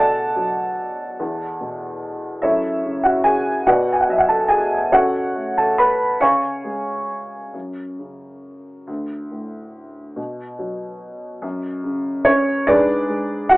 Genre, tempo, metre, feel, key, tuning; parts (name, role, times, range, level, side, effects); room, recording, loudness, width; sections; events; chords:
classical, lyrical solo piano; 48 BPM (dotted quarters); 6/8; rubato; F# minor; A4 = 440 Hz
dark upright piano; solo; 0.0-13.6 s; D2 to C#6; -18 LUFS; equal
light reverb; telephone sound; -17 LUFS; side -21 dB against mid
0.0-13.6 A section
0.0 Bm7; 1.2 Esus4; 2.4 F#m; 3.7 Bm; 4.9 F#m/C#; 6.2 C#; 7.5 F#5; 8.9 D5; 10.2 B5; 11.4 F#5; 12.7 G#dim